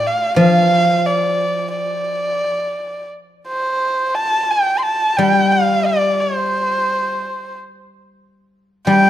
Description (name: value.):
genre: chinese traditional, Chinese chamber ensemble.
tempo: 88 BPM.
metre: 4/4.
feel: rubato.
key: G shang mode.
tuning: A4 = 439 Hz.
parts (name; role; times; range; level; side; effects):
rich erhu; melody; 0.0-9.1 s; C5 to C6; -16 LUFS; right 1 dB; none.
guzheng; accompaniment; 0.0-9.1 s; F3 to G3; -18 LUFS; left 2 dB; none.
room: moderate recital hall reverb, RT60 1.6 s.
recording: dark, warm production.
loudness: -15 LUFS.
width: side -12 dB against mid.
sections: 0.0-9.1 A section.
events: none.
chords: none.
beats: 0.38 | 1.05 1.72 2.41 3.11 | 3.82 4.51 5.19 5.87 | 6.55 7.23 7.89 8.55.